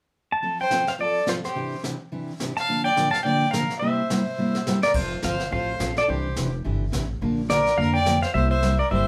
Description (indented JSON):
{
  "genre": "country, western swing",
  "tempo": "212 BPM",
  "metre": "4/4",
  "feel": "swing 59% on 8ths",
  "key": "F major",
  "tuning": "A4 = 441 Hz",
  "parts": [
    { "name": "pedal steel guitar", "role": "melody", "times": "0.3-9.1 s", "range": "C5 to A5", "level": "-26 LUFS", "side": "equal", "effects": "none" },
    { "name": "picked steel-string acoustic guitar", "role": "accompaniment", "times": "0.4-9.1 s", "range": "Bb2 to Bb4", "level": "-29 LUFS", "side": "equal", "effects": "none" },
    { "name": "jazz brush drum kit", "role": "drums", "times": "0.4-9.1 s", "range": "brushed snare drum, crash cymbal, hi-hat, kick drum, snare drum", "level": "-35 LUFS", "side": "equal", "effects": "none" },
    { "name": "clear fiddle", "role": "second line", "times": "0.6-9.1 s", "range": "F4 to F5", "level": "-32 LUFS", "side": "equal", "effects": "none" },
    { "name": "upright bass", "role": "bass", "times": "4.9-9.1 s", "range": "F1 to F2", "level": "-29 LUFS", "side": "equal", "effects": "none" }
  ],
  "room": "wet studio ambience, RT60 0.5 s",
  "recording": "band playing live in one room",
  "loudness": "-24 LUFS",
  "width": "mono",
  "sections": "0.4-5.0 A section; 5.0-9.1 B section",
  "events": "drum fill 4.4-5.0",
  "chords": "0.4 F; 1.6 Cadd9; 2.7 Bb; 3.8 C7; 5.0 F; 6.1 Cadd9; 7.2 Bb; 8.3 C7",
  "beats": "0.15 | 0.43 0.71 0.99 1.28 | 1.56 1.84 2.12 2.41 | 2.69 2.97 3.25 3.54 | 3.82 4.10 4.38 4.67 | 4.95 5.23 5.51 5.80 | 6.08 6.36 6.65 6.93 | 7.21 7.49 7.78 8.06 | 8.34 8.62 8.91"
}